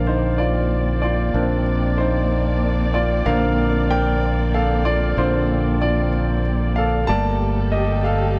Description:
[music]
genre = pop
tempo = 63 BPM (dotted quarters)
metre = 6/8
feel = straight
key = Bb major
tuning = A4 = 440 Hz
[part]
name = clear concert grand piano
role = accompaniment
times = 0.0-8.4 s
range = D3 to A5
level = -23 LUFS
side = equal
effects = none
[part]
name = warm studio string section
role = sustained chords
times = 0.0-8.4 s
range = G3 to D5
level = -29 LUFS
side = equal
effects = none
[part]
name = modern bright fingered electric bass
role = bass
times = 0.0-8.4 s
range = G1 to Bb1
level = -23 LUFS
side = equal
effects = none
[sound]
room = light reverb, studio ambience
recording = dark, warm production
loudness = -20 LUFS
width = mono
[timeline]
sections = 0.0-8.4 A section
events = grand piano solo 0.0-8.4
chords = 0.0 Bbadd9; 7.1 Gmadd9

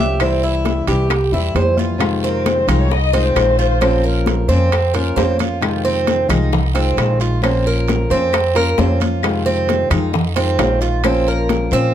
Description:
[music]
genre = latin, Cuban son and guajira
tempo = 133 BPM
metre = 4/4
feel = straight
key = F minor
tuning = A4 = 440 Hz
[part]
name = lap resonator guitar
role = melody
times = 0.0-1.5 s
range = E5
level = -24 LUFS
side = right 1 dB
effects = none
[part]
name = flamenco guitar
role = accompaniment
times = 0.0-11.9 s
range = C3 to C5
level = -21 LUFS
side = left 3 dB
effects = none
[part]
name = Cuban tres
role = arpeggios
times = 0.0-11.9 s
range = C4 to C5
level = -19 LUFS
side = right 3 dB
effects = none
[part]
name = upright bass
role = bass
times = 0.0-11.9 s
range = Bb1 to Bb2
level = -19 LUFS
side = equal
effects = none
[part]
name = bongos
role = percussion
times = 0.2-11.9 s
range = none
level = -27 LUFS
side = left 7 dB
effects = none
[part]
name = claves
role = percussion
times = 0.2-11.3 s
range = none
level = -28 LUFS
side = left 13 dB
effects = none
[part]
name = congas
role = percussion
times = 0.2-11.9 s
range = none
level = -25 LUFS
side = left 2 dB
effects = none
[part]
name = guiro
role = percussion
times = 0.2-11.9 s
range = none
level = -33 LUFS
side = right 9 dB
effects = none
[part]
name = timbales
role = percussion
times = 0.2-11.7 s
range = none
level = -25 LUFS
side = right 8 dB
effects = none
[part]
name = dark studio violin section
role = second line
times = 2.0-4.2 s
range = Ab4 to Eb5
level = -21 LUFS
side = left 6 dB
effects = none
[sound]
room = light reverb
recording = close, detailed microphones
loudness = -14 LUFS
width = side -10 dB against mid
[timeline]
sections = 0.0-2.0 A section; 2.0-11.9 B section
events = none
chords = 0.2 C; 2.0 Fm7; 3.8 Bbmadd9; 5.6 Fm7; 7.4 Bbmadd9; 9.2 Fm7; 11.0 Bbmadd9

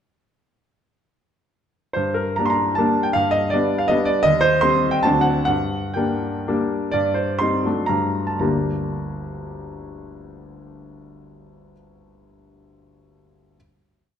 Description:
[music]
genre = classical, romantic triple-time dance for piano with dotted rhythms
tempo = 108-171 BPM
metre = 3/4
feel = rubato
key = G minor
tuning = A4 = 440 Hz
[part]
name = clear grand piano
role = solo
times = 1.9-13.6 s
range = G1 to C6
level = -18 LUFS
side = equal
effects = none
[sound]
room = wet recital hall reverb, RT60 1.6 s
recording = dark, warm production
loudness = -18 LUFS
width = side -8 dB against mid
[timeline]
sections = 2.0-7.0 A section; 7.0-8.4 coda; 8.4-11.4 final chord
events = slowing down 4.8-8.4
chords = 2.0 Gm; 3.1 G; 4.3 Cm/Eb; 5.0 D7; 5.5 Gm; 7.0 Cm/G; 7.7 D; 8.4 Gm

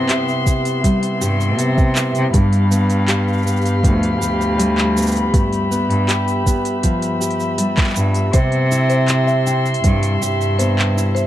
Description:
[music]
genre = folktronica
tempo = 80 BPM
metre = 4/4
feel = straight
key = C major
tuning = A4 = 440 Hz
[part]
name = muted string quartet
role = sustained chords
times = 0.0-11.3 s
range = B3 to C6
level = -23 LUFS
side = left 1 dB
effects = none
[part]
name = fingerpicked steel-string acoustic guitar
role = arpeggios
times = 0.0-11.3 s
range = G2 to G4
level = -20 LUFS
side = left 1 dB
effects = ping-pong delay
[part]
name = rich cello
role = bass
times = 0.0-11.3 s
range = D2 to C3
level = -18 LUFS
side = equal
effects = none
[part]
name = organic electronic drum kit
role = drums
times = 0.1-11.3 s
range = handclaps, hi-hat, shaker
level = -24 LUFS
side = right 1 dB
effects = none
[part]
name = electronic kick drum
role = drums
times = 0.5-10.0 s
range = none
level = -16 LUFS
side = equal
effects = none
[part]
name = marimba with medium mallets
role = second line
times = 8.3-11.3 s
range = C5 to G5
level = -24 LUFS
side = left 2 dB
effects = ping-pong delay
[sound]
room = light reverb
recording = dark, warm production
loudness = -14 LUFS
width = side -13 dB against mid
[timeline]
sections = 0.0-11.3 A section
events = none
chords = 0.0 Cmaj7; 2.3 G7; 8.3 Cmaj7

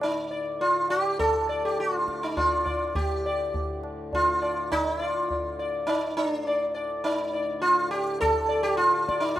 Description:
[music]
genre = indian classical, Hindustani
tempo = 103 BPM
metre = 3/4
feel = straight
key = D raga bhairavi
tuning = A4 = 438 Hz
[part]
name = sitar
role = melody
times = 0.0-9.4 s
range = D4 to D5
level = -24 LUFS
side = equal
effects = none
[part]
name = pedal harmonium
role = drone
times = 0.0-9.4 s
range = D2 to A2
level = -40 LUFS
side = left 2 dB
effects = none
[part]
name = tabla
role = percussion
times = 0.0-9.4 s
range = none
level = -32 LUFS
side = equal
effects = none
[sound]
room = light reverb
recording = rough home demo mix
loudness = -24 LUFS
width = side -13 dB against mid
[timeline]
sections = 0.0-3.0 A section; 3.0-9.4 B section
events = none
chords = none

